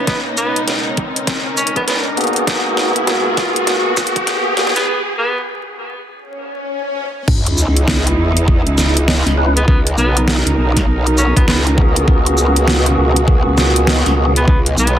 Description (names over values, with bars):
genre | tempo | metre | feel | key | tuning
glitch hop | 100 BPM | 4/4 | swing 63% on 16ths | C# dorian | A4 = 441 Hz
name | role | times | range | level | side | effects
clear tenor saxophone | melody | 0.0-5.4, 9.6-15.0 s | B3 to C#4 | -22 LUFS | equal | digital delay
dark studio string section | sustained chords | 0.0-15.0 s | C#2 to A#4 | -22 LUFS | right 2 dB | sidechain pumping
riser, swell and sub drop | sound effects | 0.0-9.7 s | none | -22 LUFS | equal | none
electronic kick drum | drums | 0.1-14.6 s | none | -14 LUFS | equal | overdrive
pop drum kit | drums | 0.1-15.0 s | crash cymbal, hi-hat, shaker, snare drum | -18 LUFS | equal | overdrive, high-pass filter on hats, high-pass filter on snare, high-pass filter on perc, high-pass filter on cymbals, high-pass filter on room
tonewheel organ | stabs | 1.8-4.7, 9.4-14.3 s | A#3 to B4 | -20 LUFS | equal | overdrive, fast rotary speaker, sidechain pumping, digital delay
growl bass | bass | 7.3-15.0 s | B1 to E2 | -15 LUFS | equal | chorus, tube saturation
room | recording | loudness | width
light reverb, digital ambience | dense, heavily limited modern master, vinyl crackle, high-pass filter | -12 LUFS | side -10 dB against mid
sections
0.0-7.3 A section; 7.3-15.0 B section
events
build-up 0.0-7.3; drum fill 0.0-4.9; riser 0.0-4.9; filter sweep on string section 0.0-7.3; filter sweep 0.0-7.3; break 4.9-7.3; swell 6.1-7.3; drop 7.3-15.0; impact 7.3-9.7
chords
0.1 Bmaj9/C#; 2.5 G#m9/C#; 4.9 N.C.; 7.3 C#m9; 9.7 Bmaj9; 12.1 G#m9/C#; 14.5 F#9sus4 (rootless)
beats
| 0.07 0.68 1.27 1.88 | 2.48 3.08 3.67 4.28 | 4.88 5.47 6.08 6.67 | 7.28 7.88 8.47 9.07 | 9.68 10.28 10.88 11.47 | 12.07 12.68 13.28 13.88 | 14.47